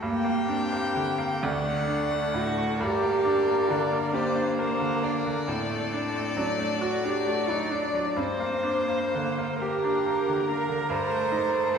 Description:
classical, slow romantic movement for piano quartet; 44 BPM (dotted quarters); 6/8; uneven beats, rubato; G minor; A4 = 440 Hz
dark violin; melody; 0.0-11.8 s; G4 to D5; -31 LUFS; left 5 dB
rich violin; second line; 0.0-11.8 s; A4 to G5; -34 LUFS; left 2 dB
warm cello; second line; 0.0-11.8 s; Bb3 to C5; -28 LUFS; right 3 dB
bright grand piano; accompaniment; 0.0-11.8 s; D2 to G4; -29 LUFS; equal
wet concert hall reverb, RT60 2.2 s; recorded in a church or concert hall; -24 LUFS; side -6 dB against mid
0.0-11.8 A section
0.0 Gm; 1.4 D; 2.8 Gm; 5.5 D7/A; 8.2 Gm; 10.9 Am7b5/G

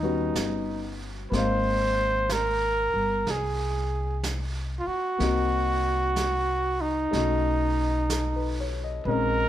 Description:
jazz ballad; 62 BPM; 4/4; swing 66% on 8ths; Ab major; A4 = 440 Hz
breathy trumpet; melody; 0.0-9.5 s; Eb4 to C5; -26 LUFS; right 1 dB; plate reverb
clear grand piano; accompaniment; 0.0-9.5 s; G3 to F5; -32 LUFS; left 4 dB
upright bass; bass; 0.0-9.5 s; G1 to Eb2; -29 LUFS; equal
vintage brush drum kit; drums; 0.4-9.5 s; brushed snare drum, hi-hat, snare drum; -36 LUFS; right 3 dB
light reverb; -24 LUFS; side -12 dB against mid
0.0-1.3 A section; 1.3-9.5 B section
0.0 Eb7alt; 1.3 Ab69; 5.2 Cm7b5; 7.1 B9

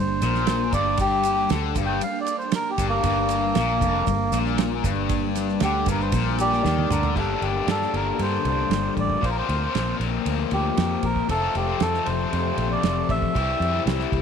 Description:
psychedelic rock; 116 BPM; 4/4; straight; G dorian; A4 = 440 Hz
melodica; melody; 0.0-13.8 s; Bb3 to G5; -25 LUFS; right 1 dB; tape echo
string machine, violas; sustained chords; 0.0-14.2 s; G3 to C6; -33 LUFS; right 18 dB; ensemble chorus
overdriven electric guitar; riff; 0.0-14.2 s; F2 to G4; -26 LUFS; left 14 dB; harmonic tremolo
fingered electric bass; bass; 0.0-14.2 s; F1 to G2; -27 LUFS; right 1 dB
damped 70s drum kit; drums; 0.2-14.2 s; crash cymbal, kick drum, ride cymbal, snare drum, toms; -29 LUFS; right 5 dB
maracas; percussion; 0.2-7.1 s; -40 LUFS; right 17 dB
light reverb, small room ambience; 1960s-style stereo with parts hard left and right; -20 LUFS; side -7 dB against mid
0.0-7.2 A section; 7.2-14.2 B section
melodica solo 0.0-7.2; drum fill 6.6-7.2
0.0 Gmadd9; 7.2 Gm; 9.2 Bbsus2; 11.3 F; 13.4 C

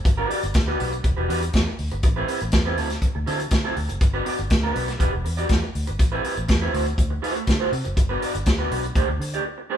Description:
disco; 121 BPM; 4/4; straight; A4 = 443 Hz
electric guitar through a small old amp; accompaniment; 0.0-9.8 s; F#3 to D5; -26 LUFS; right 2 dB
vintage muted fingered electric bass; bass; 0.0-9.4 s; E1 to D3; -27 LUFS; equal
vintage drum kit; drums; 0.1-9.4 s; hi-hat, kick drum, snare drum; -22 LUFS; equal
moderate stone room reverb, RT60 1.1 s; band playing live in one room; -20 LUFS; side -10 dB against mid
0.0-9.8 A section
break 9.4-9.8
0.1 Gmaj7; 1.0 Em9; 2.0 Am9; 2.8 D9; 4.0 Gmaj7; 5.0 Em9; 6.0 Am9; 6.7 D9; 8.0 Gmaj7; 9.0 D7sus4

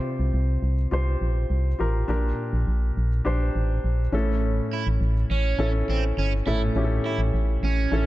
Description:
pop; 103 BPM; 4/4; straight; A4 = 440 Hz
warm grand piano; accompaniment; 0.0-8.1 s; A2 to C5; -28 LUFS; left 1 dB
organ-like FM bass; bass; 0.2-8.1 s; G1 to C2; -23 LUFS; equal
overdriven semi-hollow guitar; riff; 4.7-8.1 s; C4 to E4; -30 LUFS; right 7 dB; phaser
small room ambience; dark, warm production; -22 LUFS; side -16 dB against mid
0.0-8.1 A section
0.0 Csus4; 2.1 Gm/Bb; 4.1 A

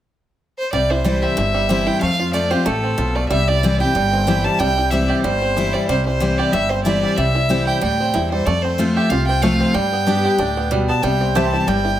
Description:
bluegrass; 186 BPM; 4/4; swing 55% on 8ths; C major; A4 = 440 Hz
clear fiddle; melody; 0.6-12.0 s; A4 to A5; -21 LUFS; right 1 dB; plate reverb
picked steel-string acoustic guitar; accompaniment; 0.7-12.0 s; F2 to G4; -20 LUFS; left 2 dB
bluegrass banjo; arpeggios; 0.7-12.0 s; G3 to G4; -23 LUFS; right 3 dB
upright bass; bass; 0.7-12.0 s; G1 to G2; -23 LUFS; equal
mandolin; stabs; 11.4-11.5 s; C4 to G5; -23 LUFS; right 4 dB
moderate studio reverb, RT60 0.8 s; -16 LUFS; side -12 dB against mid
0.7-12.0 A section
0.0 N.C.; 0.7 C; 2.0 F; 3.3 C; 8.5 F; 9.8 G; 11.0 C

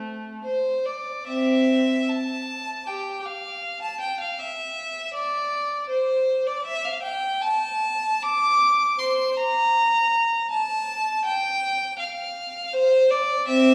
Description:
classical, baroque-style suite movement for unaccompanied violin; 79 BPM; 4/4; uneven beats, rubato; C major; A4 = 439 Hz
clear violin; solo; 0.0-13.7 s; A3 to D6; -24 LUFS; equal
wet scoring stage reverb, RT60 1.7 s; recorded in a church or concert hall, small room ambience; -24 LUFS; mono
0.0-1.3 A section; 1.3-13.7 A section

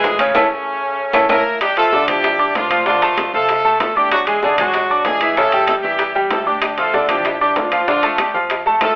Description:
latin, salsa; 192 BPM; 4/4; straight; D minor; A4 = 440 Hz
brilliant horn section; melody; 0.0-9.0 s; C#3 to Bb4; -17 LUFS; equal; plate reverb
bright grand piano; accompaniment; 0.0-8.9 s; C#3 to D6; -16 LUFS; equal
upright bass; bass; 0.0-9.0 s; F1 to G#2; -37 LUFS; equal
bongos; percussion; 0.0-9.0 s; -25 LUFS; left 1 dB
congas; percussion; 0.0-9.0 s; -37 LUFS; equal
timbales; percussion; 0.0-9.0 s; -23 LUFS; right 1 dB
claves; percussion; 0.2-1.4, 6.6-9.0 s; -26 LUFS; left 2 dB
wet studio reverb, RT60 0.8 s; telephone sound; -13 LUFS; side -24 dB against mid
0.0-1.6 A section; 1.6-9.0 B section
drum fill 0.4-1.6; band accent 0.4-1.6
0.4 A; 1.6 Dm; 2.9 F6; 4.1 E7; 5.4 A7; 6.6 Dm; 7.9 Bbmaj7

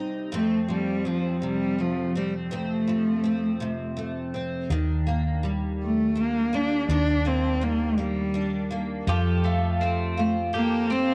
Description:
six-eight pop ballad; 55 BPM (dotted quarters); 6/8; straight; A4 = 440 Hz
picked steel-string acoustic guitar; accompaniment; 0.0-11.1 s; F2 to A4; -32 LUFS; equal; double-tracked, cassette tape
rich cello; melody; 0.3-11.1 s; F3 to D4; -27 LUFS; equal; cassette tape, tape echo
hollow-body short-scale fingered electric bass; bass; 4.7-11.1 s; Eb2 to F2; -30 LUFS; equal
twelve-string electric guitar; arpeggios; 9.1-11.1 s; F3 to G4; -33 LUFS; equal; cassette tape
light reverb, small room ambience; home recording on cassette; -26 LUFS; mono
0.0-4.7 A section; 4.7-11.1 B section
0.3 F; 4.7 Ebmaj7; 9.1 Fadd9

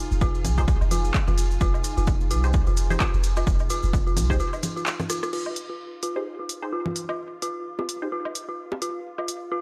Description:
minimal techno; 129 BPM; 4/4; swing 57% on 16ths; F minor; A4 = 441 Hz
swarming drone; texture; 0.0-9.6 s; F4; -44 LUFS; equal; built-in reverb, sidechain pumping
warbly tape-like pad; texture; 0.0-9.6 s; Eb4 to Ab5; -42 LUFS; equal; chorus, built-in reverb, sidechain pumping
punchy sub bass; bass; 0.1-4.4 s; F1 to C2; -26 LUFS; equal; sidechain pumping
maracas; percussion; 0.1-5.3 s; -40 LUFS; equal
dark detuned synth bell; riff; 0.2-9.6 s; F4; -34 LUFS; equal; chorus, sidechain pumping, low-pass filter, tape echo
electronic kick drum; drums; 0.2-4.4 s; -26 LUFS; equal; overdrive
minimal click drum kit; drums; 0.4-9.4 s; crash cymbal, handclaps, hi-hat, rim click; -32 LUFS; equal; overdrive
congas, woodblock and bongos; percussion; 0.4-9.3 s; -35 LUFS; equal; tape echo
filtered dub chord stab; stabs; 0.6-8.1 s; Eb4 to C5; -36 LUFS; equal; phaser, tape echo
digital ambience; -25 LUFS; mono
0.0-5.3 A section; 5.3-9.6 B section
break 4.4-5.3; drum fill 5.0-5.3; filter sweep on synth bell 5.3-9.6
0.0 Fm7

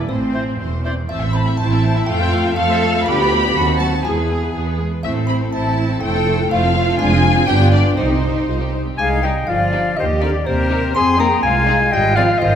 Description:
cinematic, playful, whimsical film cue; 122 BPM; 2/4; straight; A minor, C minor from 7.0 s; A4 = 440 Hz
music box; melody; 0.0-12.6 s; C5 to C6; -26 LUFS; equal
mellow clarinet; second line; 0.0-0.8, 9.0-12.6 s; C4 to C6; -19 LUFS; left 2 dB
muted studio violin section; second line; 0.0-12.2 s; Eb4 to B5; -23 LUFS; left 2 dB
muted studio viola section; accompaniment; 0.1-12.2 s; F#3 to C5; -26 LUFS; equal
muted studio cello section; bass; 0.1-12.6 s; E2 to Bb4; -23 LUFS; right 2 dB
muted studio double bass section; bass; 0.1-12.6 s; E1 to F2; -19 LUFS; right 2 dB
muted studio violin section; melody; 0.3-12.2 s; F4 to A5; -29 LUFS; left 4 dB
bright silver concert flute; second line; 0.3-0.9, 9.0-12.6 s; G4 to Ab5; -24 LUFS; left 1 dB
clear oboe; second line; 0.3-0.9 s; C5; -33 LUFS; left 1 dB
dark French horn section; sustained chords; 0.4-12.6 s; C3 to F#4; -23 LUFS; left 4 dB
moderate scoring stage reverb, RT60 1.7 s; -14 LUFS; side -8 dB against mid
0.0-1.1 A section; 1.1-9.0 B section; 9.0-12.6 C section
0.1 Am; 2.1 Fmaj7; 3.1 Bdim/D; 3.6 D#dim7; 4.0 E; 5.0 Am; 6.0 Fmaj7; 7.0 Dm7b5/F; 7.5 G7; 8.0 Cm; 10.0 Cm/Eb; 10.9 Fm; 11.9 Fm/Ab

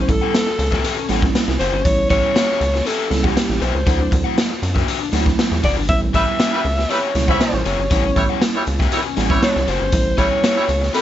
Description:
funk; 119 BPM; 4/4; straight; A mixolydian; A4 = 440 Hz
breathy alto saxophone; melody; 0.0-11.0 s; G4 to E5; -21 LUFS; equal
crunchy overdriven guitar; accompaniment; 0.0-11.0 s; C#4 to F#5; -25 LUFS; left 10 dB
mellow tine electric piano; stabs; 0.0-10.6 s; B2 to E4; -24 LUFS; right 7 dB; auto-pan
rubbery square bass; bass; 0.0-10.9 s; F#1 to F#2; -21 LUFS; equal
raw garage drum kit; drums; 0.1-11.0 s; hi-hat, kick drum, snare drum; -20 LUFS; equal
clear horn section; second line; 6.1-11.0 s; G3 to B5; -22 LUFS; right 1 dB
light reverb; nothing above 7.8 kHz; -15 LUFS; side -12 dB against mid
0.0-11.0 A section
0.0 A9; 3.9 D9; 5.9 A9

